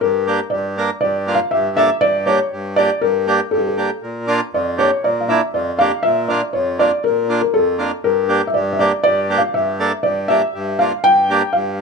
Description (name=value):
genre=klezmer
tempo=120 BPM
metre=4/4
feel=straight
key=unclear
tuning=A4 = 440 Hz
part: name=felt-muted upright piano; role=melody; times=0.0-11.8 s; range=G4 to G5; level=-16 LUFS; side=left 1 dB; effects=plate reverb
part: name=accordion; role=accompaniment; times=0.0-11.8 s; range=F2 to Bb4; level=-20 LUFS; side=right 2 dB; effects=none
room=moderate small room reverb, RT60 0.6 s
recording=none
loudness=-15 LUFS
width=side -4 dB against mid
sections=0.0-11.8 A section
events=none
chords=0.0 Gm; 4.0 Bb; 8.0 Gm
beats=| 0.03 0.53 1.03 1.53 | 2.03 2.53 3.03 3.53 | 4.03 4.53 5.04 5.54 | 6.04 6.54 7.04 7.54 | 8.04 8.54 9.04 9.55 | 10.05 10.55 11.05 11.55